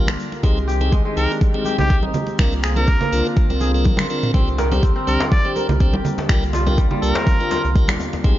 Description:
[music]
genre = afro house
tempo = 123 BPM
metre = 4/4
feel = swing 54% on 16ths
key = unclear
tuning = A4 = 441 Hz
[part]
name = warm analog pad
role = sustained chords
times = 0.0-8.4 s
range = D3 to G4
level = -27 LUFS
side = right 1 dB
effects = chorus, sidechain pumping
[part]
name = kora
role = arpeggios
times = 0.0-8.4 s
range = G3 to Bb4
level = -27 LUFS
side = equal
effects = sidechain pumping, dub echo
[part]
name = tonewheel organ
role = stabs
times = 0.0-8.4 s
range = C4 to C5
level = -26 LUFS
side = left 2 dB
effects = overdrive, stopped rotary speaker, sidechain pumping, dub echo
[part]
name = warm sub bass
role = bass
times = 0.0-8.4 s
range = G1 to C2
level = -21 LUFS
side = equal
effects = sidechain pumping
[part]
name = afro-pop drum kit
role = drums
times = 0.1-8.0 s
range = finger snaps, toms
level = -26 LUFS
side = equal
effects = none
[part]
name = congas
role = percussion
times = 0.1-8.3 s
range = none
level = -27 LUFS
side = right 2 dB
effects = none
[part]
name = tube shaker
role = percussion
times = 0.1-8.3 s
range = none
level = -43 LUFS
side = left 4 dB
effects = none
[part]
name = electronic kick drum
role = drums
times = 0.4-8.3 s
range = none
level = -17 LUFS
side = equal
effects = none
[part]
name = trumpet with straight mute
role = melody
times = 1.2-7.7 s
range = G4 to D5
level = -27 LUFS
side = right 1 dB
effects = dub echo
[part]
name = djembe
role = percussion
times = 4.6-8.2 s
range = none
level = -28 LUFS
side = left 3 dB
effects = none
[sound]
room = light reverb, studio reverb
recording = nothing above 7.5 kHz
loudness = -16 LUFS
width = side -14 dB against mid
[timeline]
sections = 0.0-8.4 A section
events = drum fill 3.9-4.3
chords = 0.4 Abmaj7/C; 2.4 Bbadd9/C; 4.3 Gm7/C

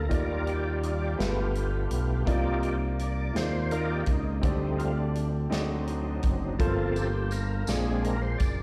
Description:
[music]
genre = slow gospel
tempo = 55 BPM (dotted quarters)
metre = 6/8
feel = straight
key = G minor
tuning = A4 = 440 Hz
[part]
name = clear upright piano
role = accompaniment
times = 0.0-8.6 s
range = G2 to D5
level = -36 LUFS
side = equal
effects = none
[part]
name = overdriven tonewheel organ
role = sustained chords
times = 0.0-8.6 s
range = F3 to D5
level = -35 LUFS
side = equal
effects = fast rotary speaker, chorus vibrato
[part]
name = smooth synth bass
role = bass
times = 0.0-8.6 s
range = F#1 to Eb2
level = -32 LUFS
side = equal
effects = none
[part]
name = natural country drum kit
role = drums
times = 0.1-8.6 s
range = hi-hat, kick drum, snare drum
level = -32 LUFS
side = equal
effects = none
[part]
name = tambourine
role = percussion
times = 7.0-8.6 s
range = none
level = -47 LUFS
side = equal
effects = none
[sound]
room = light reverb, small room ambience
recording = live gig heard through the venue's PA, recital hall reverb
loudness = -28 LUFS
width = mono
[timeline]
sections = 0.0-8.6 A section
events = tonewheel organ solo 0.0-8.6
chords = 0.1 Ebmaj9; 1.2 G7; 2.3 Cm11; 4.4 D7sus4; 5.5 D7b9; 6.6 Gm11; 7.7 Bb7

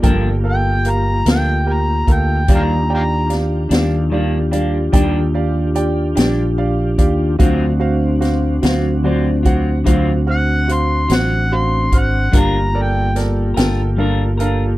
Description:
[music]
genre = slow blues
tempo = 49 BPM (dotted quarters)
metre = 12/8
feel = straight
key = G minor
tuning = A4 = 440 Hz
[part]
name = overdriven harmonica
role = melody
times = 0.0-13.2 s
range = F5 to C6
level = -21 LUFS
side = equal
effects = none
[part]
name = bright upright piano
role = accompaniment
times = 0.0-14.7 s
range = F#4 to E#6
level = -24 LUFS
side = right 5 dB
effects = none
[part]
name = semi-hollow electric guitar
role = accompaniment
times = 0.0-14.6 s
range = G2 to Bb4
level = -22 LUFS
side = left 3 dB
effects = harmonic tremolo
[part]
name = tonewheel organ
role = sustained chords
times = 0.0-14.8 s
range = Bb3 to G4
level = -22 LUFS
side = left 1 dB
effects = slow rotary speaker, chorus vibrato
[part]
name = fretless electric bass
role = bass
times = 0.0-14.8 s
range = G1 to Eb2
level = -17 LUFS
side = equal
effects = lush chorus
[part]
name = swinging big-band drum kit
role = drums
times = 0.0-14.6 s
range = hi-hat, kick drum, snare drum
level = -16 LUFS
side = equal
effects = none
[sound]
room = little or no reverb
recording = dry, close 1970s-style studio recording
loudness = -14 LUFS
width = side -16 dB against mid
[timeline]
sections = 0.0-14.8 A section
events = none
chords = 0.0 Gm7; 2.5 Ebmaj7; 7.4 D7#9; 12.3 Gm7

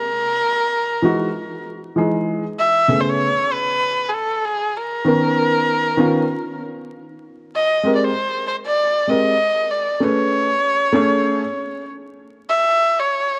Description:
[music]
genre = hip hop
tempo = 97 BPM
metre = 4/4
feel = swing 61% on 16ths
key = unclear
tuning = A4 = 444 Hz
[part]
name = dark erhu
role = melody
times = 0.0-13.4 s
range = G#4 to E5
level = -21 LUFS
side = equal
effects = none
[part]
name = dark upright piano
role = accompaniment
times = 1.0-11.4 s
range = C#3 to C#5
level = -22 LUFS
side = equal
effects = none
[sound]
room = moderate plate reverb, RT60 2.9 s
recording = vinyl crackle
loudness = -19 LUFS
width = mono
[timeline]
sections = 0.0-12.5 A section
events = none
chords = 0.1 Emaj7; 2.6 Amaj9; 5.1 Bmaj9; 7.5 G#maj9; 10.0 Amaj9; 12.5 A (rootless)

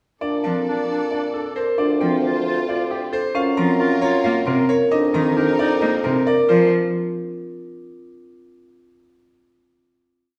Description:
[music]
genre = classical, minimalist pattern music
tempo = 268 BPM (eighths)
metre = 7/8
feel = straight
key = Bb major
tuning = A4 = 440 Hz
[part]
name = bright grand piano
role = melody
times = 0.2-6.7 s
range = G4 to Bb5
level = -29 LUFS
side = equal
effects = none
[part]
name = clear clarinet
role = second line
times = 0.2-6.2 s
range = D4 to F4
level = -29 LUFS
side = equal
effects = none
[part]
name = rich symphonic string section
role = sustained chords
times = 0.2-6.2 s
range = Eb4 to D5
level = -32 LUFS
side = equal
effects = none
[part]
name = marimba with medium mallets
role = arpeggios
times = 0.2-6.7 s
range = C4 to Bb4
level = -23 LUFS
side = equal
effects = none
[part]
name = mellow bassoon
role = bass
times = 0.2-6.7 s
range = D2 to Bb2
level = -26 LUFS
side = equal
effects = none
[part]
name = clear cello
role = accompaniment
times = 0.4-6.7 s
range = C3 to Bb3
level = -28 LUFS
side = equal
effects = none
[sound]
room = wet recital hall reverb, RT60 1.3 s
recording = none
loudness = -20 LUFS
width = mono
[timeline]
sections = 0.2-6.5 A section; 6.5-8.1 final chord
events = none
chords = 0.2 Bbmaj7; 1.8 Dm7; 3.4 Gbmaj7; 4.9 F7sus4; 6.5 Bb5

